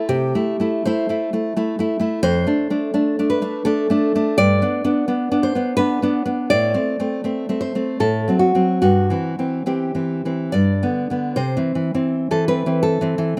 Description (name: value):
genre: romantic piece for solo classical guitar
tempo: 66-89 BPM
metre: 3/4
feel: rubato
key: C major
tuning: A4 = 440 Hz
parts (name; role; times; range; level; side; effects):
- nylon-string guitar; solo; 0.0-13.4 s; F2 to D5; -20 LUFS; equal; none
room: light reverb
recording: recorded outdoors, with no room sound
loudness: -20 LUFS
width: mono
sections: 0.0-11.4 A section; 11.4-13.4 A section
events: none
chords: 0.1 Am/C; 2.2 D5; 4.4 G (rootless); 6.5 Am; 8.0 Am6; 8.8 C/G; 10.6 G; 11.4 C